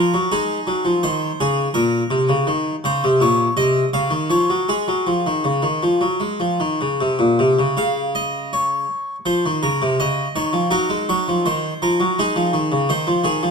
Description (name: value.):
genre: classical, baroque-style suite movement for harpsichord.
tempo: 80 BPM.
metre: 4/4.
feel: uneven beats, rubato.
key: Db major.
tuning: A4 = 440 Hz.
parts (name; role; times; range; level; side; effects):
harpsichord; solo; 0.0-13.5 s; Bb2 to F5; -17 LUFS; equal; none.
room: moderate recital hall reverb, RT60 1.5 s.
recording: close, detailed microphones.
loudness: -17 LUFS.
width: side -5 dB against mid.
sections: 0.0-13.5 A section.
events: none.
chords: 0.3 Ab5; 1.8 Bbm; 4.7 Db; 6.2 Ab; 7.8 N.C.; 9.3 Dbmaj13; 10.7 Ebm; 12.2 Ab5.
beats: 0.33 1.04 | 1.77 2.49 3.21 3.94 | 4.69 5.46 6.23 6.99 | 7.77 8.52 9.26 9.99 | 10.72 11.44 12.17 12.90.